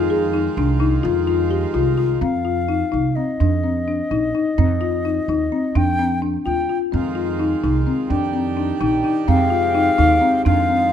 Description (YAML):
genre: contemporary instrumental, chamber music in an uneven meter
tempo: 255 BPM (eighths)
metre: 5/8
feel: straight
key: F dorian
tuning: A4 = 440 Hz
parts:
  - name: hand-pumped harmonium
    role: sustained chords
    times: 0.0-2.2, 6.9-10.9 s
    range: C3 to G4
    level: -25 LUFS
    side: right 8 dB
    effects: none
  - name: folk marimba with medium mallets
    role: arpeggios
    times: 0.0-10.9 s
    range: C4 to Ab4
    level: -20 LUFS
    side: left 5 dB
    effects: none
  - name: upright bass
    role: bass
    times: 0.0-10.9 s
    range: Bb1 to F2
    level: -22 LUFS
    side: right 3 dB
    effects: none
  - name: wooden flute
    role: melody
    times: 2.2-6.8, 9.3-10.9 s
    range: Eb5 to G5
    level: -21 LUFS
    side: left 2 dB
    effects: none
room: light reverb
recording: close, detailed microphones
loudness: -17 LUFS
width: side -9 dB against mid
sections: 0.0-2.2 A section; 2.2-10.9 B section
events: none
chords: 0.0 Fm7; 2.2 F5; 3.4 Eb5/F; 4.6 Cmadd11; 5.8 G5/F; 6.9 Fm7; 8.1 Ebmaj7/F; 9.3 Abmaj7/F